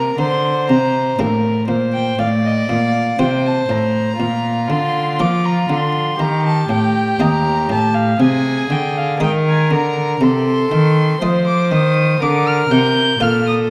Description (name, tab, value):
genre	classical, baroque-style sonata movement with continuo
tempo	60 BPM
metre	4/4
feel	straight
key	Bb major from 10.2 s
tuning	A4 = 440 Hz
part	dark violin	melody	0.0-13.5 s	Eb5 to G6	-24 LUFS	equal	none
part	warm violin	second line	0.0-13.7 s	F4 to D5	-23 LUFS	equal	none
part	buff-stop harpsichord	accompaniment	0.0-13.7 s	Eb2 to F5	-24 LUFS	equal	none
part	rich cello	bass	0.0-13.7 s	Eb2 to F3	-20 LUFS	equal	none
room	moderate scoring stage reverb, RT60 1.8 s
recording	none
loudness	-16 LUFS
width	mono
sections	0.0-13.7 A section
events	none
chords	0.0 Gm; 2.2 F/A; 4.2 Bb; 6.2 Eb; 8.2 Ab/C; 10.2 F7/C; 12.2 Bb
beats	0.18 1.19 | 2.19 3.19 4.20 5.19 | 6.20 7.20 8.20 9.21 | 10.21 11.21 12.21 13.20